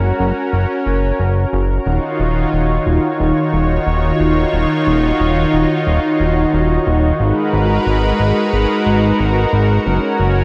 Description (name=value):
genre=synthwave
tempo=90 BPM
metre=4/4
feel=straight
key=Eb minor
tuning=A4 = 439 Hz
part: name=lush unison pad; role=sustained chords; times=0.0-10.4 s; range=Eb3 to Db5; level=-18 LUFS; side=equal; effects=chorus
part: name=fat analog bass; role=bass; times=0.0-10.4 s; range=Eb1 to Ab1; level=-18 LUFS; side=equal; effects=tube saturation
room=wet concert hall reverb, RT60 1.8 s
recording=big arena sound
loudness=-16 LUFS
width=mono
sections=0.0-1.9 A section; 1.9-10.4 B section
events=none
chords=0.0 Gb; 1.9 Ebm7; 7.2 Abm7; 9.9 Gb